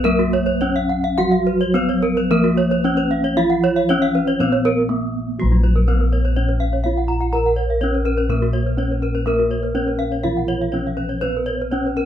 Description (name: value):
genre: Balinese gamelan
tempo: 105-124 BPM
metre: 4/4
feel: straight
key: Bb pelog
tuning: A4 = 440 Hz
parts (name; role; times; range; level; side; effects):
- gamelan-type bronze metallophone; melody; 0.0-12.1 s; Gb3-20c to Bb4; -21 LUFS; right 1 dB; none
- gamelan-type bronze metallophone; arpeggios; 0.0-12.1 s; Gb4-20c to Bb5; -24 LUFS; left 4 dB; none
- gamelan-type bossed gongs; bass; 0.0-12.1 s; Bb1 to Cb5+20c; -21 LUFS; equal; none
- gamelan-type bronze metallophone; arpeggios; 0.2-12.0 s; F4-30c to Gb5-20c; -25 LUFS; right 5 dB; none
- gamelan-type bronze metallophone; accompaniment; 1.2-5.4, 9.3-12.1 s; F3-30c to Cb4+20c; -25 LUFS; equal; none
room: light reverb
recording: band playing live in one room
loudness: -16 LUFS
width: side -10 dB against mid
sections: 0.0-5.4 A section; 5.4-12.1 B section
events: break 4.7-5.4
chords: none